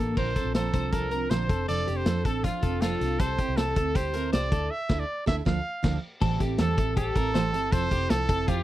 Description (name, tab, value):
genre	jangly indie pop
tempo	159 BPM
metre	4/4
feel	straight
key	F major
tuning	A4 = 441 Hz
part	clear trumpet	melody	0.0-8.6 s	F4 to F5	-31 LUFS	right 1 dB	slapback echo
part	picked steel-string acoustic guitar	accompaniment	0.0-8.6 s	A2 to Bb4	-31 LUFS	right 8 dB	none
part	twelve-string electric guitar	arpeggios	0.0-8.6 s	Bb3 to C5	-32 LUFS	left 5 dB	harmonic tremolo, slapback echo
part	vintage muted picked electric bass	bass	0.0-8.6 s	F1 to F2	-30 LUFS	left 1 dB	none
part	vintage drum kit	drums	0.2-8.6 s	crash cymbal, hi-hat, kick drum, snare drum	-28 LUFS	left 1 dB	none
room	little or no reverb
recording	dry, close 1970s-style studio recording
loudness	-24 LUFS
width	side -14 dB against mid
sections	0.2-6.2 A section; 6.2-8.6 B section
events	band accent 4.7-6.2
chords	0.2 Bbadd9; 1.5 F6; 3.2 C6; 4.5 Dmadd9; 6.2 Am7; 7.7 Fmaj7